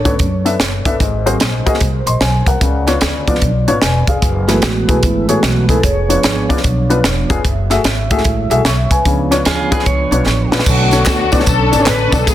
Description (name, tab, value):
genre	uptempo gospel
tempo	149 BPM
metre	4/4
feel	swing 64% on 8ths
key	unclear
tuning	A4 = 444 Hz
part	mellow French horn section	sustained chords	0.0-10.7 s	D4 to E5	-27 LUFS	right 1 dB	none
part	mellow tonewheel organ	sustained chords	0.0-12.3 s	D3 to C#5	-20 LUFS	right 3 dB	slow rotary speaker
part	upright bass	bass	0.0-12.3 s	E1 to F#2	-18 LUFS	equal	none
part	warm upright piano	accompaniment	0.1-12.3 s	G#2 to C#6	-18 LUFS	left 3 dB	none
part	crisp fusion drum kit	drums	0.1-12.3 s	crash cymbal, hi-hat, kick drum, snare drum	-16 LUFS	right 1 dB	none
part	clean electric guitar	second line	9.5-10.5 s	E#4 to C#5	-21 LUFS	right 4 dB	spring reverb
part	muted studio string section	melody	10.7-12.3 s	A3 to B4	-15 LUFS	left 4 dB	none
part	tambourine and handclaps	percussion	10.7-12.3 s	none	-24 LUFS	right 2 dB	none
room	light reverb, studio reverb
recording	dense, heavily limited modern master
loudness	-11 LUFS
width	side -12 dB against mid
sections	0.0-10.7 A section; 10.7-12.3 B section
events	tonewheel organ solo 0.0-10.7; drum fill 10.3-10.7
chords	0.0 Bm9; 1.0 G#9; 2.6 C#7b9; 4.2 F#m11; 5.8 C#7b9/E#; 7.4 F#m9; 9.1 C#7b9; 10.7 Bm9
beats	0.19 0.60 | 1.00 1.40 1.81 2.21 | 2.61 3.02 3.42 3.82 | 4.22 4.63 5.03 5.43 | 5.83 6.24 6.64 7.04 | 7.45 7.85 8.25 8.65 | 9.05 9.46 9.86 10.26 | 10.66 11.07 11.47 11.87 | 12.27